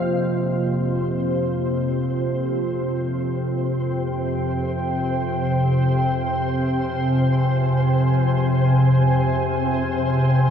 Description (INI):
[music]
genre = dark ambient drone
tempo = free time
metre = none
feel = none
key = F minor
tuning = A4 = 440 Hz
[part]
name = deep dark ambient pad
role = sustained chords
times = 0.0-10.5 s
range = Bb3 to Ab5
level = -25 LUFS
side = right 1 dB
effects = chorus, built-in reverb
[part]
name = organ-like drone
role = drone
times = 0.0-10.5 s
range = F2 to C3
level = -20 LUFS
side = equal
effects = ensemble chorus, built-in reverb
[part]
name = flickering grainy texture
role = texture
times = 0.0-10.5 s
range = C5 to F5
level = -31 LUFS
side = left 1 dB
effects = built-in reverb
[sound]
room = wet cathedral reverb, RT60 5.1 s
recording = in a vast, echoing space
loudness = -19 LUFS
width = side -8 dB against mid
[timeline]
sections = 0.1-10.5 A section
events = fade-in on synth texture 0.1-10.5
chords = 0.1 Fm